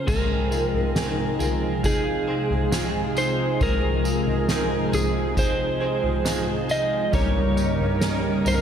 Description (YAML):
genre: dream pop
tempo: 68 BPM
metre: 4/4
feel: straight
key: Ab major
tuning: A4 = 440 Hz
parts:
  - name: electric slide guitar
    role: melody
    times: 0.0-8.6 s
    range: Ab4 to Eb5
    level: -26 LUFS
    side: right 1 dB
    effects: tape echo
  - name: warm analog pad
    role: sustained chords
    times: 0.0-8.6 s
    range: G2 to Bb4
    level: -26 LUFS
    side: right 1 dB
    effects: chorus
  - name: clean electric guitar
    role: arpeggios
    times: 0.0-8.6 s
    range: G3 to C5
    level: -30 LUFS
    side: left 1 dB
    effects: ensemble chorus, tape echo
  - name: direct-recorded clean electric guitar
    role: accompaniment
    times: 0.1-8.6 s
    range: Ab2 to Bb4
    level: -31 LUFS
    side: right 4 dB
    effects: harmonic tremolo, wide subtle chorus
  - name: soft-mallet drum kit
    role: drums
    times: 0.1-8.6 s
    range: crash cymbal, kick drum, snare drum, tambourine, toms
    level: -25 LUFS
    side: left 1 dB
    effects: none
  - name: vibraphone with medium mallets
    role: texture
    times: 0.3-3.1 s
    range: Eb5 to Ab5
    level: -38 LUFS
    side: left 2 dB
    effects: tape echo
room: wet lush hall reverb, RT60 2.4 s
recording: dreamy mix soaked in reverb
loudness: -20 LUFS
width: side -8 dB against mid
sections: 0.1-8.6 A section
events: none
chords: 0.1 Ab6; 7.1 Eb7/G